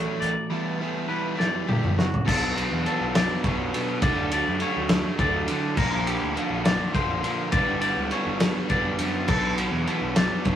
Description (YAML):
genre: math rock and midwest emo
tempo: 68 BPM (dotted quarters)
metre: 6/8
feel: straight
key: unclear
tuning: A4 = 440 Hz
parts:
  - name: twelve-string electric guitar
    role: accompaniment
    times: 0.0-2.3 s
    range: A2 to A4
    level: -32 LUFS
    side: right 3 dB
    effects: none
  - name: twangy electric guitar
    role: arpeggios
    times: 0.0-10.6 s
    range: F#4 to D5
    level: -29 LUFS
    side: left 2 dB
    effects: none
  - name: overdriven electric guitar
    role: riff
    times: 0.0-10.6 s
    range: G2 to E4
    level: -28 LUFS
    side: right 1 dB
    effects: none
  - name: fuzz picked electric bass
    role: bass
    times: 0.0-10.6 s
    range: G1 to D3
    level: -31 LUFS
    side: equal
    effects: overdrive
  - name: loose indie drum kit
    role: drums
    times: 0.2-10.6 s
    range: crash cymbal, hi-hat, kick drum, ride cymbal, snare drum, toms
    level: -25 LUFS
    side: equal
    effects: none
room: light reverb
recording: rough rehearsal-room recording, tube saturation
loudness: -22 LUFS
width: side -10 dB against mid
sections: 0.0-2.3 A section; 2.3-10.6 B section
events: drum fill 1.4-2.3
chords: 0.0 Dmaj7; 0.5 Em11; 2.3 Bm7; 4.0 D; 5.8 Bbmaj7; 7.5 Gmaj7; 9.3 Bm7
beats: | 0.52 1.40 | 2.28 3.15 | 4.03 4.91 | 5.79 6.66 | 7.54 8.41 | 9.29 10.17